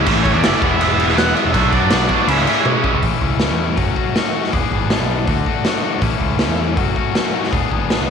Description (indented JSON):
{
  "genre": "indie rock",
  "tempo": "160 BPM",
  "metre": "4/4",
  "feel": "straight",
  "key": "A major",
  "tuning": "A4 = 440 Hz",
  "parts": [
    { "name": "overdriven electric guitar", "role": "riff", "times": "0.0-8.1 s", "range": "A2 to G#4", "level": "-20 LUFS", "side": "left 11 dB", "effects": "none" },
    { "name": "overdriven electric guitar", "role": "riff", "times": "0.0-3.0 s", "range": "E2 to F#4", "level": "-20 LUFS", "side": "right 14 dB", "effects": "lush chorus, tape echo" },
    { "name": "growling picked electric bass", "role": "bass", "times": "0.0-8.1 s", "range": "E1 to F#2", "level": "-21 LUFS", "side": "right 1 dB", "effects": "overdrive, tube saturation" },
    { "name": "raw garage drum kit", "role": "drums", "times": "0.1-8.0 s", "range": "crash cymbal, hi-hat, kick drum, snare drum, toms", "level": "-18 LUFS", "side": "right 1 dB", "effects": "none" },
    { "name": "octave-fuzz lead guitar", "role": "melody", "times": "0.2-2.7 s", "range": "C#5 to F#5", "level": "-22 LUFS", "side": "equal", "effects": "distortion, tape echo" }
  ],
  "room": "moderate echo chamber reverb, RT60 2.2 s",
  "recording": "1960s-style stereo with parts hard left and right",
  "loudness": "-14 LUFS",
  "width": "side -6 dB against mid",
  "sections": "0.0-3.0 A section; 3.0-8.1 B section",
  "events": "drum fill 2.7-3.0",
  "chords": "0.1 A; 0.6 E; 1.5 Bm; 2.3 C#m; 3.0 A; 3.8 F#m; 4.5 E7; 5.3 D; 6.0 A; 6.8 F#m; 7.5 E7"
}